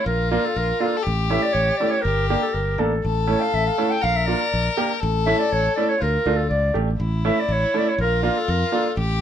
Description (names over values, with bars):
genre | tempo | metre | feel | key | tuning
klezmer | 121 BPM | 2/4 | straight | unclear | A4 = 442 Hz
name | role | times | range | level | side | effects
mellow clarinet | melody | 0.0-9.0 s | A4 to G5 | -23 LUFS | equal | none
rich violin | second line | 0.0-9.2 s | E4 to Bb4 | -26 LUFS | left 6 dB | none
fingered electric bass | bass | 0.1-9.2 s | G1 to F2 | -23 LUFS | equal | none
bright upright piano | accompaniment | 0.3-8.8 s | A3 to A4 | -24 LUFS | right 4 dB | none
room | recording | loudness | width
moderate studio reverb, RT60 0.6 s | none | -19 LUFS | side -9 dB against mid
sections
0.0-7.0 A section; 7.0-9.2 A section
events
none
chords
0.1 Bb; 1.1 A; 2.0 Gm; 3.0 A; 4.0 Bb; 5.0 A; 6.0 Dm; 7.0 A; 8.0 Bb